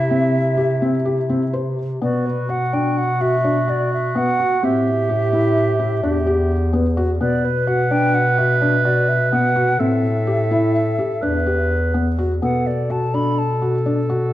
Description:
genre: contemporary instrumental, chamber music in an uneven meter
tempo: 253 BPM (eighths)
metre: 11/8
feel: straight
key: B phrygian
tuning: A4 = 440 Hz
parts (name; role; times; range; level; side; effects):
- hollow concert flute; melody; 0.0-13.6 s; B4 to B5; -23 LUFS; right 1 dB; none
- mellow clarinet; second line; 0.0-14.3 s; E4 to B4; -23 LUFS; right 2 dB; none
- breathy bass clarinet; bass; 0.0-14.3 s; E2 to C3; -21 LUFS; left 1 dB; none
- felt-muted upright piano; arpeggios; 0.1-14.3 s; B3 to C5; -22 LUFS; left 2 dB; none
room: moderate recital hall reverb, RT60 1.8 s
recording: dark, warm production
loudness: -16 LUFS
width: side -14 dB against mid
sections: 0.0-2.0 A section; 2.0-14.3 B section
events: none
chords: 0.0 C; 2.0 Bm; 4.6 Am7; 6.0 Em; 7.2 Bm; 9.8 Am7; 11.2 Em; 12.4 Bm7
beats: 0.11 0.34 0.58 0.82 1.06 1.30 1.54 1.78 | 2.02 2.25 2.49 2.73 2.97 3.21 3.44 3.68 3.92 4.16 4.39 | 4.63 4.86 5.10 5.33 5.57 5.80 6.04 6.27 6.51 6.74 6.98 | 7.21 7.45 7.68 7.91 8.15 8.38 8.62 8.85 9.09 9.33 9.56 | 9.80 10.03 10.27 10.51 10.74 10.98 11.22 11.46 11.70 11.94 12.18 | 12.43 12.66 12.90 13.14 13.38 13.62 13.87 14.10

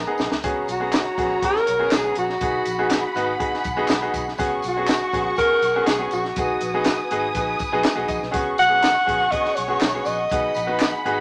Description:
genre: uptempo 1960s-style soul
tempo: 122 BPM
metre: 4/4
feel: straight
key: unclear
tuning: A4 = 440 Hz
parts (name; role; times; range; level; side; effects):
- dark symphonic violin section; second line; 0.0-11.2 s; Gb4 to Eb6; -30 LUFS; equal; none
- vintage muted fingered electric bass; bass; 0.0-11.2 s; Ab1 to Db2; -40 LUFS; equal; none
- clear concert grand piano; accompaniment; 0.1-11.2 s; Cb4 to Cb6; -28 LUFS; equal; none
- compact cocktail drum kit; drums; 0.2-11.2 s; hi-hat, kick drum, snare drum; -28 LUFS; equal; none
- tambourine and handclaps; percussion; 0.2-10.9 s; none; -37 LUFS; equal; none
- breathy alto saxophone; melody; 0.7-11.0 s; Gb4 to Gb5; -24 LUFS; equal; none
room: wet studio reverb, RT60 0.5 s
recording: none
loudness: -21 LUFS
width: mono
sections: 0.4-11.2 A section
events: drum fill 0.0-0.4; grand piano fill 7.6-8.3, 10.8-11.2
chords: 0.4 Db7sus4; 2.4 Cb6; 4.4 Db7sus4; 6.4 Cb6; 8.3 Db7sus4; 10.3 Cb6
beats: | 0.43 0.93 1.42 1.92 | 2.41 2.90 3.40 3.89 | 4.38 4.88 5.37 5.87 | 6.36 6.86 7.35 7.84 | 8.34 8.83 9.32 9.81 | 10.31 10.80

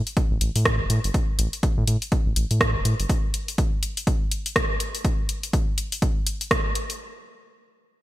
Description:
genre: minimal techno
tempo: 123 BPM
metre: 4/4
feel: swing 59% on 16ths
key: unclear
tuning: A4 = 440 Hz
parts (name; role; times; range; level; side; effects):
- house drum kit; drums; 0.1-7.0 s; hi-hat, rim click; -26 LUFS; equal; studio reverb
- electronic kick drum; drums; 0.2-6.6 s; none; -24 LUFS; equal; studio reverb
- round analog bass; bass; 0.3-3.1 s; E1 to A2; -22 LUFS; equal; sidechain pumping
room: digital ambience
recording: bright 1980s-style digital production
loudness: -21 LUFS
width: side -15 dB against mid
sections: 0.0-7.0 A section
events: drop 0.0-7.0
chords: none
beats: 0.17 0.66 | 1.14 1.63 2.12 2.61 | 3.09 3.58 4.07 4.56 | 5.05 5.53 6.02 6.51

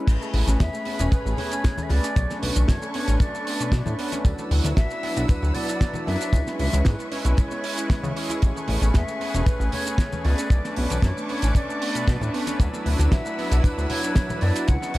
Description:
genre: nu-disco, nu disco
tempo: 115 BPM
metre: 4/4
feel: straight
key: A major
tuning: A4 = 440 Hz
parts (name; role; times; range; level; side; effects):
- warm analog pad; accompaniment; 0.0-15.0 s; F#3 to B4; -29 LUFS; equal; chorus, cassette tape, sidechain pumping, tape echo
- warm studio violin section; sustained chords; 0.0-15.0 s; G#4 to E6; -37 LUFS; equal; sidechain pumping
- wide unison pluck; arpeggios; 0.1-15.0 s; F#3 to E4; -35 LUFS; right 3 dB; cassette tape, sidechain pumping, dub echo
- chorused synth bass; bass; 0.1-15.0 s; E1 to C#3; -22 LUFS; equal; tube saturation
- damped 70s drum kit; drums; 0.1-15.0 s; crash cymbal, hi-hat, shaker, snare drum; -31 LUFS; right 2 dB; none
- kick drum; drums; 0.1-14.8 s; none; -20 LUFS; equal; none
- tambourine and congas; percussion; 0.1-15.0 s; none; -37 LUFS; left 2 dB; none
- mellow hollow silver concert flute; melody; 0.6-15.0 s; B4 to F#5; -32 LUFS; left 1 dB; dub echo
room: light reverb, small room ambience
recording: echo-heavy mix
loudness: -21 LUFS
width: side -18 dB against mid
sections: 0.1-15.0 A section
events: drop 0.1-15.0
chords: 0.1 Amaj9; 2.2 Bm9; 4.2 D69; 6.3 C#m7; 8.4 Amaj9; 10.5 Bm9; 12.6 D69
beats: | 0.08 0.60 1.12 1.64 | 2.16 2.68 3.21 3.73 | 4.25 4.77 5.29 5.82 | 6.34 6.86 7.38 7.90 | 8.42 8.95 9.47 9.99 | 10.51 11.03 11.55 12.08 | 12.60 13.12 13.64 14.16 | 14.68

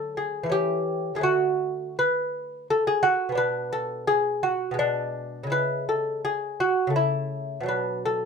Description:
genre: classical, baroque-style dance for lute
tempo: 84 BPM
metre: 3/4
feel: rubato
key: unclear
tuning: A4 = 440 Hz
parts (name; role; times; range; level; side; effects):
- lute; solo; 0.0-8.3 s; B2 to B4; -23 LUFS; equal; none
room: moderate studio reverb, RT60 0.6 s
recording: minimal, uncompressed stereo recording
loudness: -23 LUFS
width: side -5 dB against mid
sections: 0.0-8.3 A section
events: none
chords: 0.0 D; 0.5 A7/E; 1.2 D; 4.8 G#dim/B; 5.5 C#m; 7.0 A/C#; 7.7 Bm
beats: 0.52 | 1.23 1.98 2.70 | 3.39 4.09 4.80 | 5.53 6.25 6.97 | 7.69

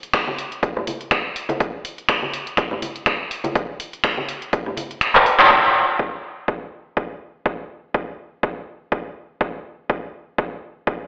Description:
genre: house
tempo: 123 BPM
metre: 4/4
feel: swing 55% on 16ths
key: none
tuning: none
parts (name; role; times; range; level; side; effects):
- punchy analog drum machine; drums; 0.0-5.5 s; finger snaps, handclaps, hi-hat; -17 LUFS; equal; none
- electronic kick drum; drums; 0.1-11.0 s; none; -22 LUFS; equal; none
- congas; percussion; 0.3-5.5 s; none; -29 LUFS; equal; none
room: wet echo chamber reverb, RT60 1.5 s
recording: played on a big sound system in a bare room, large studio reverb, telephone sound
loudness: -19 LUFS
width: side -32 dB against mid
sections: 0.0-5.5 A section; 5.5-11.1 B section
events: kick drops out 5.0-5.5; drum fill 5.1-5.5; band accent 5.4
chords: none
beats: 0.14 0.63 1.12 | 1.60 2.09 2.58 3.07 | 3.56 4.04 4.53 5.02 | 5.51 5.99 6.48 6.97 | 7.46 7.95 8.43 8.92 | 9.41 9.90 10.38 10.87

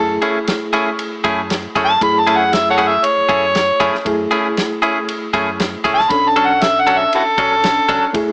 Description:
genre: straight-eighth soul blues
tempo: 118 BPM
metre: 4/4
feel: straight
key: F# minor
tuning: A4 = 443 Hz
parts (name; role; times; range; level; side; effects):
- overdriven harmonica; second line; 0.0-8.1 s; E4 to B5; -16 LUFS; equal; none
- overdriven reed electric piano; accompaniment; 0.0-8.3 s; A3 to A4; -25 LUFS; equal; fast tremolo
- sub bass with octave; bass; 0.0-8.3 s; F#1 to F#2; -36 LUFS; equal; none
- direct-recorded clean electric guitar; stabs; 0.2-8.1 s; F#3 to A4; -21 LUFS; equal; spring reverb, slapback echo
- warm soul drum kit; drums; 0.2-8.3 s; kick drum, ride cymbal, snare drum; -27 LUFS; equal; none
room: light reverb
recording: small speaker sound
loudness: -16 LUFS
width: mono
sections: 0.0-8.3 A section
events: harmonica solo 0.0-8.3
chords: 0.0 F#m9; 6.1 Bm9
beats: 0.48 0.99 1.51 | 2.02 2.53 3.04 3.55 | 4.06 4.57 5.08 5.59 | 6.10 6.61 7.12 7.63 | 8.14

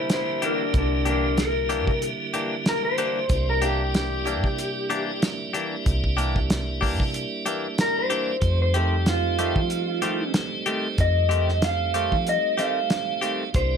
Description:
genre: straight-eighth soul blues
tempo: 94 BPM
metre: 4/4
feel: swing 55% on 16ths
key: unclear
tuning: A4 = 437 Hz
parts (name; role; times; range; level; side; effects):
- electric guitar through a small old amp; melody; 0.0-13.8 s; D4 to F5; -25 LUFS; equal; plate reverb
- tonewheel organ; accompaniment; 0.0-13.8 s; D3 to E4; -29 LUFS; right 3 dB; slow rotary speaker, overdrive
- vintage muted fingered electric bass; bass; 0.0-13.8 s; C2 to F3; -26 LUFS; equal; none
- cloth-damped thuddy drum kit; drums; 0.1-13.7 s; hi-hat, kick drum, snare drum; -25 LUFS; equal; none
- direct-recorded clean electric guitar; stabs; 0.4-13.4 s; Eb3 to G4; -28 LUFS; left 4 dB; phaser
room: light reverb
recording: none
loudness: -21 LUFS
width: side -7 dB against mid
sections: 0.0-13.8 A section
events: none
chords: 0.0 C9; 8.4 F9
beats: 0.10 | 0.74 1.38 2.02 2.66 | 3.30 3.94 4.58 5.22 | 5.86 6.50 7.14 7.78 | 8.42 9.06 9.70 10.34 | 10.98 11.62 12.26 12.90 | 13.54

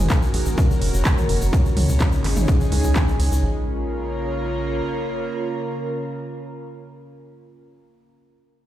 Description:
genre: melodic techno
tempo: 126 BPM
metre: 4/4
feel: straight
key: Bb minor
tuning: A4 = 440 Hz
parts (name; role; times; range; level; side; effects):
- evolving wavetable pad; sustained chords; 0.0-7.1 s; Db3 to Bb4; -28 LUFS; right 1 dB; chorus, built-in reverb, sidechain pumping
- tight sequencer bass; bass; 0.0-4.8 s; Gb1 to Db2; -22 LUFS; equal; sidechain pumping
- airy breathy pad; texture; 0.0-7.4 s; Eb4 to Bb5; -30 LUFS; equal; chorus, sidechain pumping
- electronic kick drum; drums; 0.1-3.1 s; none; -19 LUFS; equal; none
- techno drum kit; drums; 0.1-3.3 s; handclaps, hi-hat, toms; -26 LUFS; right 1 dB; sidechain pumping on toms, sidechain pumping on hats
- egg shaker; percussion; 0.1-3.4 s; none; -37 LUFS; left 3 dB; none
room: digital ambience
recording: played on a big sound system in a bare room, large studio reverb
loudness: -19 LUFS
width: side -13 dB against mid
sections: 0.0-3.4 A section; 3.4-7.2 B section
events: none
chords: 0.0 Gb; 1.5 Dbsus2; 3.4 Bbm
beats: 0.10 0.58 1.05 | 1.53 2.00 2.48 2.96 | 3.43 3.91 4.39 4.86 | 5.34 5.82 6.29 6.77

